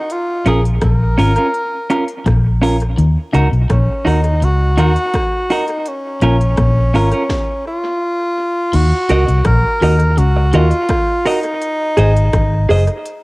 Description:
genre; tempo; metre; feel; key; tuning
roots reggae; 83 BPM; 4/4; straight; Eb dorian from 8.7 s; A4 = 439 Hz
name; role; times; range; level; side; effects
breathy tenor saxophone; melody; 0.0-13.2 s; Db4 to Bb4; -19 LUFS; equal; tape echo
techno drum kit; drums; 0.1-13.2 s; crash cymbal, hi-hat, kick drum, rim click, snare drum; -22 LUFS; equal; cassette tape, analog delay
semi-hollow electric guitar; accompaniment; 0.5-12.8 s; Db4 to Eb5; -18 LUFS; right 2 dB; tape echo
electric guitar at the edge of break-up; riff; 0.5-12.8 s; Gb2 to Eb3; -20 LUFS; left 2 dB; none
vintage muted fingered electric bass; bass; 0.5-12.9 s; Gb1 to Eb2; -13 LUFS; equal; none
room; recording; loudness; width
light reverb; home recording on cassette; -12 LUFS; side -22 dB against mid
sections
0.0-8.7 A section; 8.7-13.2 B section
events
stop 7.3-8.7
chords
0.1 Bbm; 3.0 Ebm; 5.9 Bbm; 8.7 Ebm; 11.6 Ab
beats
| 0.09 0.81 1.53 2.25 | 2.98 3.70 4.42 5.14 | 5.86 6.58 7.30 8.02 | 8.74 9.46 10.18 10.89 | 11.61 12.33 13.05

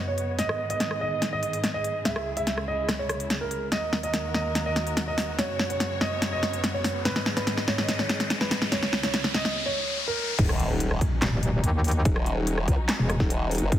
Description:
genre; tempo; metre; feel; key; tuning
heavy wobble dubstep; 144 BPM; 4/4; half-time; Eb phrygian; A4 = 441 Hz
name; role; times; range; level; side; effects
dark symphonic string section; sustained chords; 0.0-13.8 s; Db2 to Eb5; -33 LUFS; left 1 dB; sidechain pumping, low-pass filter
dark concert grand piano; melody; 0.1-10.3 s; Bb4 to Fb5; -30 LUFS; right 2 dB; dub echo
big-room dance drum kit; drums; 0.2-13.8 s; crash cymbal, handclaps, hi-hat, rim click, snare drum; -28 LUFS; equal; overdrive
riser and impact; sound effects; 5.3-12.1 s; none; -32 LUFS; left 1 dB; none
formant-sweep wobble bass; bass; 10.4-13.8 s; Eb1 to Db2; -26 LUFS; equal; chorus, overdrive
electronic kick drum; drums; 10.4-13.8 s; none; -24 LUFS; equal; overdrive
metallic wobble bass; bass; 11.2-13.2 s; Eb1 to Eb2; -23 LUFS; equal; chorus, overdrive
room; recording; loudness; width
light reverb; heavily compressed radio sound; -24 LUFS; side -12 dB against mid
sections
0.0-10.4 A section; 10.4-13.8 B section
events
build-up 0.0-10.4; drum fill 0.0-9.6; riser 5.3-10.4; drop 10.4-13.8; impact 10.4-12.1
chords
0.4 Abm; 2.1 Dbm; 3.7 Ebm; 5.4 Gbsus4; 7.1 Abm; 8.7 Dbm; 10.4 Ebm7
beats
| 0.39 0.80 1.22 1.64 | 2.05 2.47 2.89 3.30 | 3.72 4.14 4.55 4.97 | 5.39 5.80 6.22 6.64 | 7.05 7.47 7.89 8.30 | 8.72 9.14 9.55 9.97 | 10.39 10.80 11.22 11.64 | 12.05 12.47 12.89 13.30 | 13.72

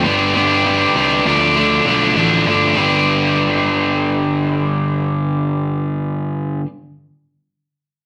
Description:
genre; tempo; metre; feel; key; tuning
rock; 99 BPM; 4/4; straight; G mixolydian; A4 = 440 Hz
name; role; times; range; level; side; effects
biting overdriven guitar; riff; 0.0-6.7 s; G2 to D4; -17 LUFS; equal; none
fuzz picked electric bass; bass; 0.0-6.6 s; G1 to D2; -25 LUFS; equal; overdrive
room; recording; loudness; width
wet club reverb, RT60 0.8 s; none; -16 LUFS; mono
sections
0.0-2.8 A section; 2.8-5.2 B section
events
none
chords
0.0 G; 1.3 Dm; 2.8 G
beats
| 0.35 0.95 1.55 2.16 | 2.76 3.36 3.97 4.57

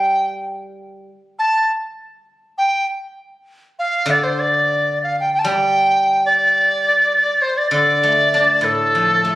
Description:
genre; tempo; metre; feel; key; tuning
chinese traditional; 100 BPM; 2/4; rubato; D yu mode; A4 = 440 Hz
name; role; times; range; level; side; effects
bright reedy large dizi; melody; 0.0-9.4 s; A4 to A5; -15 LUFS; equal; none
guzheng; accompaniment; 0.0-1.1, 4.1-9.4 s; A2 to D4; -24 LUFS; equal; none
room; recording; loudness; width
moderate recital hall reverb, RT60 1.6 s; recorded on a phone in the room, studio reverb; -14 LUFS; side -16 dB against mid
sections
0.0-5.3 A section; 5.3-9.4 B section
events
none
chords
none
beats
| 0.48 1.10 | 1.70 2.30 | 2.89 3.49 | 4.09 4.70 | 5.32 5.93 | 6.53 7.13 | 7.72 8.33 | 8.93

